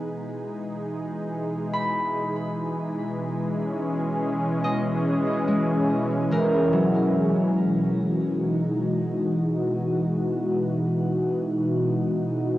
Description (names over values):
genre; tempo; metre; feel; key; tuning
ambient; 72 BPM; 3/4; straight; E lydian; A4 = 440 Hz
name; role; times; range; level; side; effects
warm analog pad; sustained chords; 0.0-12.6 s; B2 to G#4; -24 LUFS; equal; chorus, shimmer reverb
concert harp; arpeggios; 0.0-8.7 s; E3 to B5; -27 LUFS; equal; tape echo, shimmer reverb
room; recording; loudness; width
wet spring reverb, RT60 2.0 s, small room ambience; home recording on cassette; -22 LUFS; side -15 dB against mid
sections
0.0-7.6 A section; 7.6-12.6 B section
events
fade-in on analog synth pad 0.0-7.6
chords
0.0 Emaj9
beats
| 0.05 0.89 1.72 | 2.55 3.39 4.22 | 5.05 5.89 6.72 | 7.55 8.39 9.22 | 10.05 10.89 11.72 | 12.55